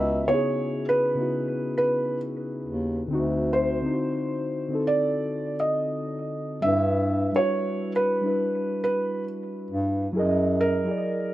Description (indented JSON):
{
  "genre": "lo-fi hip hop",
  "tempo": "68 BPM",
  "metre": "4/4",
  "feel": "swing 64% on 16ths",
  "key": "unclear",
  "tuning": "A4 = 439 Hz",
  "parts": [
    { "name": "felt-muted upright piano", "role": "melody", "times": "0.0-11.3 s", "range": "A#4 to E5", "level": "-26 LUFS", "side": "right 1 dB", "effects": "analog delay" },
    { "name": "muted felt-like synth keys", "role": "accompaniment", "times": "0.0-11.3 s", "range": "C#3 to D#5", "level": "-27 LUFS", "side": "left 1 dB", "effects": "chorus, cassette tape" },
    { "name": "warm bass clarinet", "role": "bass", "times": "0.0-10.9 s", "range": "C#2 to G2", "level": "-26 LUFS", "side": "equal", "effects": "none" }
  ],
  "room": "light reverb, studio ambience",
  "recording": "rough home demo mix",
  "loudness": "-23 LUFS",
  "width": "side -15 dB against mid",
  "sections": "0.0-11.3 A section",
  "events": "none",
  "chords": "0.0 C#m11; 3.1 D7b9; 6.6 G6; 10.2 F#13"
}